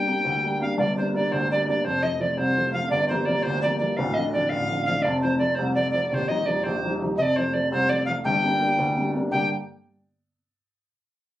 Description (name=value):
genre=celtic folk, Celtic jig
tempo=112 BPM (dotted quarters)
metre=6/8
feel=straight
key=G minor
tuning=A4 = 442 Hz
part: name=tenor recorder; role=melody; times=0.0-9.5 s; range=C5 to G5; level=-24 LUFS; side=equal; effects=none
part: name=dark upright piano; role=accompaniment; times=0.0-9.5 s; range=D1 to D5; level=-25 LUFS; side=equal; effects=none
room=moderate studio reverb, RT60 0.6 s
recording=recorded on a phone in the room, club ambience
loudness=-21 LUFS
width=side -14 dB against mid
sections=0.8-9.3 A section; 9.3-10.4 B section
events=none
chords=0.0 Gm; 1.8 F; 2.9 Gm7; 4.0 Dm; 5.0 F; 6.1 Ebadd9; 7.2 F; 8.2 Gm